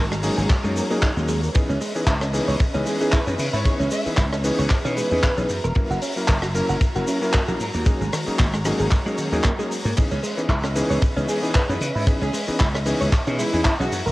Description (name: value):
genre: nu-disco, nu disco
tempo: 114 BPM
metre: 4/4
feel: swing 55% on 16ths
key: C# dorian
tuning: A4 = 440 Hz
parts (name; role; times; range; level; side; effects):
- warm studio string section; sustained chords; 0.0-14.1 s; G#3 to A#5; -32 LUFS; equal; sidechain pumping, cassette tape
- direct-recorded clean electric guitar; riff; 0.0-14.1 s; D#3 to F#5; -29 LUFS; right 1 dB; analog chorus, cassette tape
- slap bass; bass; 0.0-14.1 s; E1 to C#3; -25 LUFS; equal; none
- tight funk drum kit; drums; 0.1-14.1 s; crash cymbal, handclaps, hi-hat, ride cymbal, rim click, shaker; -28 LUFS; equal; none
- clear electric grand piano; accompaniment; 0.2-13.9 s; E3 to A#4; -26 LUFS; left 1 dB; sidechain pumping, cassette tape
- kick drum; drums; 0.5-13.8 s; none; -20 LUFS; equal; none
- warm studio violin section; melody; 2.9-5.5, 11.3-14.0 s; E4 to E5; -29 LUFS; equal; cassette tape, tape echo
room: light reverb, small room ambience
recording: home recording on cassette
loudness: -19 LUFS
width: side -19 dB against mid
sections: 0.0-14.1 A section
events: none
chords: 0.0 G#9sus4; 1.5 C#m9; 5.5 F#7; 7.6 G#9sus4; 10.0 C#m9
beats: 0.50 1.02 | 1.55 2.08 2.60 3.13 | 3.65 4.18 4.71 5.23 | 5.76 6.29 6.81 7.34 | 7.87 8.39 8.92 9.44 | 9.97 10.50 11.02 11.55 | 12.07 12.60 13.13 13.65